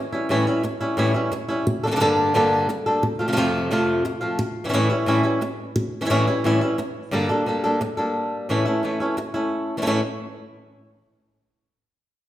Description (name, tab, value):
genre	flamenco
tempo	176 BPM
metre	4/4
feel	straight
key	A phrygian dominant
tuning	A4 = 441 Hz
part	flamenco guitar	solo	0.1-10.0 s	F2 to A4	-20 LUFS	equal	none
room	wet recital hall reverb, RT60 1.6 s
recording	recorded in a church or concert hall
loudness	-20 LUFS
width	side -13 dB against mid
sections	0.0-9.9 A section; 9.9-11.2 B section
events	none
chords	0.0 A7; 1.7 Gmadd9; 3.0 F; 4.4 A7; 7.1 Gmadd9; 8.5 A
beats	| 0.29 0.63 0.97 1.32 | 1.66 2.00 2.34 2.68 | 3.02 3.37 3.71 4.05 | 4.39 4.73 5.07 5.42 | 5.76 6.10 6.44 6.78 | 7.12 7.46 7.81 8.15 | 8.49 8.83 9.17 9.52 | 9.86